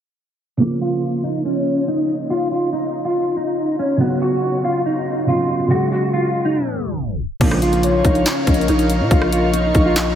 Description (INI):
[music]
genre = hip hop, trap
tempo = 141 BPM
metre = 4/4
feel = half-time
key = Bb phrygian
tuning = A4 = 441 Hz
[part]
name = mellow electric guitar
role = melody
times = 0.6-10.2 s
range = Bb3 to F#4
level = -19 LUFS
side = equal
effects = ensemble chorus, low-pass filter, tape echo
[part]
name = felt-muted upright piano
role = accompaniment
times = 0.6-10.2 s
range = Db3 to Ab4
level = -23 LUFS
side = right 2 dB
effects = low-pass filter
[part]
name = airy breathy pad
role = sustained chords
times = 7.8-10.2 s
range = Bb4 to Db6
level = -26 LUFS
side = right 1 dB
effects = chorus, phaser
[part]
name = analog synth brass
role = stabs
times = 7.4-7.6 s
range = Db2 to F3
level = -32 LUFS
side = right 2 dB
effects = none
[part]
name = growling 808-style bass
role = bass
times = 7.4-10.2 s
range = Bb1 to Bb2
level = -19 LUFS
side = equal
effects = none
[part]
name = trap drum kit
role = drums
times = 7.4-10.1 s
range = crash cymbal, handclaps, hi-hat, kick drum, rim click, snare drum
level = -19 LUFS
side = equal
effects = none
[part]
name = hollow clarinet-like synth lead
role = second line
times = 7.8-10.2 s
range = Db5 to Eb5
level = -23 LUFS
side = left 3 dB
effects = chorus, tape echo
[sound]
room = wet huge ambient reverb, RT60 7.9 s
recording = dreamy mix soaked in reverb, tape stop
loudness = -16 LUFS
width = side -9 dB against mid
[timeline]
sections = 0.6-7.4 A section; 7.4-10.2 B section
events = filter sweep 0.6-7.4; tape stop 6.6-7.4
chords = 0.6 Bbm; 4.0 Bsus2; 5.7 Gbsus2; 7.4 Bbm